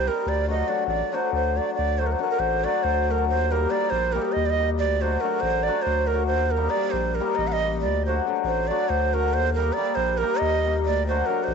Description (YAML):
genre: balkan folk, Balkan wedding band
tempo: 278 BPM (eighths)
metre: 7/8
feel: straight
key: D phrygian dominant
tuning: A4 = 439 Hz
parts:
  - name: breathy bright low ney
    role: melody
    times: 0.0-11.5 s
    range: A4 to F#5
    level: -25 LUFS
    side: right 9 dB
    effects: none
  - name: cimbalom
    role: accompaniment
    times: 0.0-11.5 s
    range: F#3 to G4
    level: -26 LUFS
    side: left 12 dB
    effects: none
  - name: saturated sub bass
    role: bass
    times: 0.0-11.5 s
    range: A1 to Eb2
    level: -27 LUFS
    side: equal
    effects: none
room: moderate plate reverb, RT60 3.7 s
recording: 1960s-style stereo with parts hard left and right, nothing above 7.8 kHz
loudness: -21 LUFS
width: side -6 dB against mid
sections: 0.0-1.8 A section; 1.8-11.5 B section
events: none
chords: 0.3 D; 3.3 Eb; 4.8 D; 6.3 Eb; 7.8 D; 9.4 Eb; 10.9 D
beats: 0.06 | 0.28 0.49 0.71 0.93 1.14 1.36 1.57 | 1.79 2.00 2.22 2.44 2.65 2.87 3.08 | 3.30 3.52 3.73 3.95 4.16 4.38 4.60 | 4.81 5.03 5.24 5.46 5.68 5.89 6.11 | 6.33 6.54 6.76 6.97 7.19 7.41 7.62 | 7.84 8.05 8.27 8.49 8.70 8.92 9.13 | 9.35 9.57 9.78 10.00 10.21 10.43 10.65 | 10.86 11.08 11.29 11.51